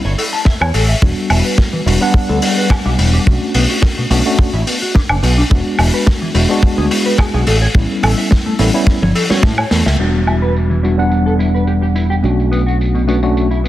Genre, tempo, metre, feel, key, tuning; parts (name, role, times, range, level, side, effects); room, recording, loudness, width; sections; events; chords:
nu-disco, nu disco; 107 BPM; 4/4; swing 53% on 16ths; E dorian; A4 = 438 Hz
picked electric bass; bass; 0.0-13.7 s; E1 to A2; -15 LUFS; equal
mellow electric guitar; riff; 0.1-13.7 s; B2 to A5; -22 LUFS; left 1 dB; analog chorus, low-pass filter, tape echo
vintage drum kit; drums; 0.2-13.7 s; crash cymbal, hi-hat, snare drum, tambourine, toms, woodblock; -19 LUFS; left 1 dB; low-pass filter on hats, low-pass filter on toms, low-pass filter on cymbals, low-pass filter on snare, low-pass filter on perc, low-pass filter on room
kick drum; drums; 0.5-9.6 s; -12 LUFS; equal; soft clipping on kick
tine electric piano; accompaniment; 1.0-13.5 s; G3 to F#5; -17 LUFS; left 1 dB; overdrive, fast stereo tremolo, low-pass filter, tape echo
light reverb, small room ambience; dense, heavily limited modern master; -11 LUFS; side -14 dB against mid
0.0-10.0 A section; 10.0-13.7 B section
drum fill 8.9-10.0; band accent 9.9; filter sweep on drum 10.0-13.7; filter sweep on tine electric piano 10.0-13.7
0.0 A; 1.0 Em7; 3.3 Bm7; 5.5 E7; 7.5 A7; 10.0 Em7; 12.2 Bm7